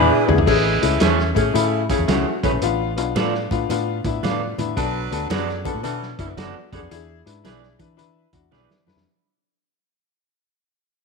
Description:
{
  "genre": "uptempo 1960s-style soul",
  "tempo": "112 BPM",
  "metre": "4/4",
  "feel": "swing 66% on 8ths",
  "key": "A major",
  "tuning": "A4 = 439 Hz",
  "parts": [
    { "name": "clear saxophone section", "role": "second line", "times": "0.0-6.3 s", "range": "C#3 to B4", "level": "-26 LUFS", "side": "right 11 dB", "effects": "none" },
    { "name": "clear upright piano", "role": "accompaniment", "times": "0.0-9.0 s", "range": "A3 to B4", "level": "-22 LUFS", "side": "left 12 dB", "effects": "none" },
    { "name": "electric guitar through a small old amp", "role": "stabs", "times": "0.0-8.7 s", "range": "B3 to D5", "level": "-26 LUFS", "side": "right 9 dB", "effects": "warbly pitch drift" },
    { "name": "vintage muted fingered electric bass", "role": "bass", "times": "0.0-9.0 s", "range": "F#1 to E3", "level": "-26 LUFS", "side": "right 1 dB", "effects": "none" },
    { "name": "vintage drum kit", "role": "drums", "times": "0.3-9.1 s", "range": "crash cymbal, hi-hat, kick drum, snare drum, toms", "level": "-25 LUFS", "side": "right 1 dB", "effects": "none" },
    { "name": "congas", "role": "percussion", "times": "0.3-9.0 s", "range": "none", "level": "-33 LUFS", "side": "right 9 dB", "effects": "none" }
  ],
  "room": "moderate echo chamber reverb, RT60 1.5 s, studio ambience",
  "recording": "1960s-style stereo with parts hard left and right",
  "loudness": "-18 LUFS",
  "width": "side -4 dB against mid",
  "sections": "0.5-9.1 A section",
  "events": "drum fill 0.0-0.5, 8.5-9.1; band accent 0.0-0.5; fade-out 0.5-9.1",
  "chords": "0.5 Amaj7; 2.6 Dm6/A; 4.8 Bm7; 6.9 E7"
}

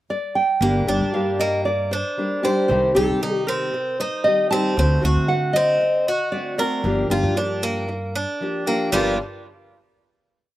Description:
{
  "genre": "latin",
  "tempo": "116 BPM",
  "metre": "4/4",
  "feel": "straight",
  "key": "G minor",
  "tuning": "A4 = 436 Hz",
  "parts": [
    { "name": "nylon-string guitar", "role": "melody", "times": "0.1-9.2 s", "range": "A4 to A5", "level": "-22 LUFS", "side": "equal", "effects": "slapback echo" },
    { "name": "fingerpicked steel-string acoustic guitar", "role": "accompaniment", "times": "0.6-9.1 s", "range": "G2 to G4", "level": "-24 LUFS", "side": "left 1 dB", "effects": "none" },
    { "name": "Cuban tres", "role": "arpeggios", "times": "0.6-9.2 s", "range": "G3 to C5", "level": "-24 LUFS", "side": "right 2 dB", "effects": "slapback echo" },
    { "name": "upright bass", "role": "bass", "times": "0.6-9.2 s", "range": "G1 to D3", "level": "-24 LUFS", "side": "equal", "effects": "none" }
  ],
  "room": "little or no reverb",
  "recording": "recorded outdoors, with no room sound",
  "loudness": "-18 LUFS",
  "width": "side -14 dB against mid",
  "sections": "0.0-0.6 pickup bar; 0.6-8.9 A section; 8.9-10.6 final chord",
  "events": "none",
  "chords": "0.0 N.C.; 0.6 Gm; 2.7 Cm; 4.8 D7; 6.8 Gm7"
}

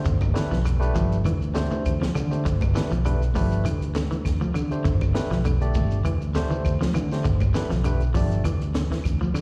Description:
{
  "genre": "afrobeat",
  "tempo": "100 BPM",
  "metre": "4/4",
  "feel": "swing 54% on 16ths",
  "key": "G mixolydian",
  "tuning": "A4 = 439 Hz",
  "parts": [
    { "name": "barky tine electric piano", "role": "accompaniment", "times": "0.0-8.5 s", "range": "A3 to D5", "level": "-33 LUFS", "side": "equal", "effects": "overdrive, slapback echo" },
    { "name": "fingered electric bass", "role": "bass", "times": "0.0-9.4 s", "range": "G1 to D3", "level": "-26 LUFS", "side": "equal", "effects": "none" },
    { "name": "congas", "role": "percussion", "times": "0.0-9.4 s", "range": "none", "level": "-35 LUFS", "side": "equal", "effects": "none" },
    { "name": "electric guitar at the edge of break-up", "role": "arpeggios", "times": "0.1-9.4 s", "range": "D3 to F3", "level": "-32 LUFS", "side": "equal", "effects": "slapback echo" },
    { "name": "compact cocktail drum kit", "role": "drums", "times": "0.1-9.4 s", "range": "hi-hat, kick drum, snare drum", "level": "-29 LUFS", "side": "equal", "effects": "none" },
    { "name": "shekere", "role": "percussion", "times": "0.1-9.4 s", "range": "none", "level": "-38 LUFS", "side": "equal", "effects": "none" },
    { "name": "claves", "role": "percussion", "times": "0.2-9.4 s", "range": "none", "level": "-46 LUFS", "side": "equal", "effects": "slapback echo" }
  ],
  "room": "little or no reverb",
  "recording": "live gig heard through the venue's PA, recital hall reverb",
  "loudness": "-24 LUFS",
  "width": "mono",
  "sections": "0.0-9.4 A section",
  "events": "none",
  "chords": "0.1 G7; 1.2 D7sus2; 2.5 G7; 3.6 Dsus2; 4.8 G; 6.0 D7sus2; 7.2 G7; 8.4 Dsus2"
}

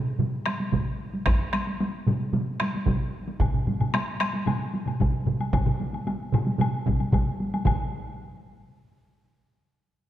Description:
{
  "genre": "japanese traditional, taiko drum ensemble",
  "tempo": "113 BPM",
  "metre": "4/4",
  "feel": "straight",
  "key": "none",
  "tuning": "none",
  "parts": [
    { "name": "solo taiko drums", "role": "percussion", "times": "0.2-8.2 s", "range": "none", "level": "-29 LUFS", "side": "right 4 dB", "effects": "none" },
    { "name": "taiko ensemble", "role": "percussion", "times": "0.2-7.9 s", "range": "none", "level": "-30 LUFS", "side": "equal", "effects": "none" },
    { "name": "taiko ensemble", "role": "percussion", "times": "0.2-8.2 s", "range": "none", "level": "-30 LUFS", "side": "left 3 dB", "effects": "none" },
    { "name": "taiko ensemble", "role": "percussion", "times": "0.7-7.9 s", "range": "none", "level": "-28 LUFS", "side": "equal", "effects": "none" },
    { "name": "woodblock", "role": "percussion", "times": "3.4-7.9 s", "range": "none", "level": "-36 LUFS", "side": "left 3 dB", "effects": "none" }
  ],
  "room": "wet scoring stage reverb, RT60 2.0 s",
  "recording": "dark, warm production",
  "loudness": "-24 LUFS",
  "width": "side -12 dB against mid",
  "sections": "0.0-7.7 A section; 7.7-9.8 B section",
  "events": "none",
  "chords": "none"
}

